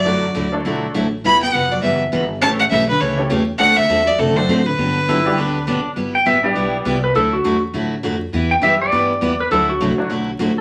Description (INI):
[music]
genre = country, western swing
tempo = 203 BPM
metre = 4/4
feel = swing 61% on 8ths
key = G major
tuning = A4 = 440 Hz
[part]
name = clear fiddle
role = melody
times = 0.0-5.7 s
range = A4 to B5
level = -19 LUFS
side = equal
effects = none
[part]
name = hollow-body jazz guitar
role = second line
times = 0.0-5.7 s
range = C3 to E4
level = -26 LUFS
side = equal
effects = none
[part]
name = honky-tonk upright piano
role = accompaniment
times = 0.0-10.1 s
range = E3 to A4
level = -27 LUFS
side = equal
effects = none
[part]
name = upright bass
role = bass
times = 0.0-10.6 s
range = E1 to A2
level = -30 LUFS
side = equal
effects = none
[part]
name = picked steel-string acoustic guitar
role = accompaniment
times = 0.1-10.5 s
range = C#3 to A4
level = -23 LUFS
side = equal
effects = none
[part]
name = clean lap steel guitar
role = second line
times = 5.1-10.6 s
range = D4 to G5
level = -20 LUFS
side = equal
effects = none
[sound]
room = wet studio reverb, RT60 0.6 s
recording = vinyl crackle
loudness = -17 LUFS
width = mono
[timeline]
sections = 0.0-6.0 A section; 6.0-10.6 B section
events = electric slide guitar solo 6.0-10.6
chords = 0.1 Dadd9; 1.2 Emadd9; 2.4 A7; 3.6 D7; 4.8 Gmaj7; 6.0 G6; 7.2 Dadd9; 8.3 Em; 9.5 Dadd9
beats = | 0.06 0.36 0.65 0.95 | 1.24 1.54 1.83 2.13 | 2.42 2.72 3.01 3.31 | 3.60 3.90 4.20 4.49 | 4.79 5.08 5.38 5.67 | 5.97 6.26 6.56 6.86 | 7.15 7.45 7.74 8.04 | 8.33 8.63 8.92 9.22 | 9.51 9.81 10.10 10.40